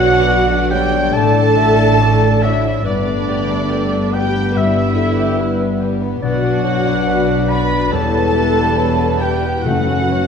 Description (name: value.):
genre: cinematic, emotional film score for orchestra.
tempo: 71 BPM.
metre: 4/4.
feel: rubato.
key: unclear.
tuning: A4 = 436 Hz.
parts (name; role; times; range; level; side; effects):
dark studio violin section; melody; 0.0-10.3 s; D5 to B5; -24 LUFS; left 2 dB; none.
dark clarinet; second line; 0.0-10.3 s; G4 to E5; -26 LUFS; left 3 dB; none.
mellow hollow concert flute; second line; 0.0-10.3 s; D5 to B5; -25 LUFS; equal; none.
warm oboe; second line; 0.0-10.3 s; D5 to B5; -23 LUFS; right 3 dB; none.
warm studio violin section; second line; 0.0-10.3 s; G3 to D5; -26 LUFS; left 2 dB; none.
warm studio viola section; accompaniment; 0.0-10.3 s; G3 to B4; -20 LUFS; right 2 dB; none.
warm French horn section; sustained chords; 0.0-10.3 s; D3 to D4; -22 LUFS; left 6 dB; none.
concert harp; arpeggios; 0.0-10.3 s; E2 to E5; -22 LUFS; left 9 dB; none.
dark studio double bass section; bass; 0.0-10.3 s; E1 to B1; -21 LUFS; right 4 dB; none.
warm studio cello section; bass; 0.0-10.3 s; E2 to B2; -23 LUFS; right 3 dB; none.
timpani; percussion; 0.0-0.7, 9.6-10.3 s; F#2 to B2; -24 LUFS; left 3 dB; none.
room: moderate scoring stage reverb, RT60 1.6 s.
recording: dark, warm production.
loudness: -13 LUFS.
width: side -6 dB against mid.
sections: 0.0-10.3 A section.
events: none.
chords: 0.0 Bm; 1.2 D/A; 2.9 Gadd9; 4.6 Em/G; 6.2 Bm; 7.9 Em; 9.6 F#m.